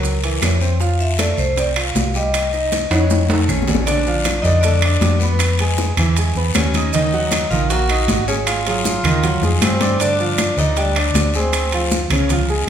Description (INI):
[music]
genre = Afro-Cuban jazz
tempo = 157 BPM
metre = 4/4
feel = straight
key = unclear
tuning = A4 = 440 Hz
[part]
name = vibraphone with medium hard mallets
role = melody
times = 0.0-11.9 s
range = Bb4 to Gb5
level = -23 LUFS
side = equal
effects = none
[part]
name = warm baby grand piano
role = accompaniment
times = 0.0-12.7 s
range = Db3 to Eb6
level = -23 LUFS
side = right 3 dB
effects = none
[part]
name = hollow-body short-scale fingered electric bass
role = bass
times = 0.0-12.6 s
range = Ab1 to G2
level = -19 LUFS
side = equal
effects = none
[part]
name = bongos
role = percussion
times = 0.0-12.5 s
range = none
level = -27 LUFS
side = left 6 dB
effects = none
[part]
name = congas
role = percussion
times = 0.0-12.7 s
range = none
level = -26 LUFS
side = left 1 dB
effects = none
[part]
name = guiro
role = percussion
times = 0.0-12.7 s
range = none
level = -28 LUFS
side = left 5 dB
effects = none
[part]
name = maracas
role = percussion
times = 0.0-12.7 s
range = none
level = -30 LUFS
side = right 6 dB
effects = none
[part]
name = timbales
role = percussion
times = 0.2-12.5 s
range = none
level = -25 LUFS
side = right 3 dB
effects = none
[part]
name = claves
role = percussion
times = 0.4-12.3 s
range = none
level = -31 LUFS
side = right 2 dB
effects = none
[part]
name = breathy tenor saxophone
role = second line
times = 3.5-11.9 s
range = Cb4 to Gb4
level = -25 LUFS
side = left 2 dB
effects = none
[sound]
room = wet recital hall reverb, RT60 1.5 s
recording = recorded in a church or concert hall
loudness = -15 LUFS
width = side -9 dB against mid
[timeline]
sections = 0.0-3.9 A section; 3.9-12.7 B section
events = drum fill 2.9-3.9, 9.4-10.0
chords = 0.0 Gb7; 0.8 F; 2.3 Cm; 3.1 Faug; 3.9 Bbmaj7; 5.4 Fdim; 6.2 E; 6.9 Ebm; 8.5 Ab6; 10.0 G5; 11.5 Dm7b5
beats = 0.04 0.42 | 0.80 1.19 1.57 1.95 | 2.34 2.72 3.10 3.49 | 3.87 4.25 4.64 5.02 | 5.40 5.79 6.17 6.55 | 6.94 7.32 7.70 8.09 | 8.47 8.85 9.23 9.62 | 10.00 10.38 10.77 11.15 | 11.53 11.91 12.30 12.68